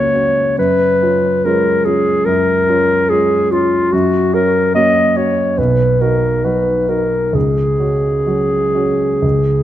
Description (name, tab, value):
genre	classical, romantic duo for clarinet and grand piano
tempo	63-73 BPM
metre	4/4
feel	rubato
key	unclear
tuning	A4 = 440 Hz
part	warm clarinet	melody	0.0-9.6 s	E#4 to D#5	-14 LUFS	left 1 dB	none
part	warm grand piano	accompaniment	0.0-9.6 s	B1 to F#4	-16 LUFS	right 1 dB	none
room	moderate scoring stage reverb, RT60 1.6 s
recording	none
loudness	-12 LUFS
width	side -12 dB against mid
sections	0.0-9.6 A section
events	none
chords	0.0 F#; 0.6 C#7/F#; 3.9 F#; 5.6 B; 7.3 C#sus4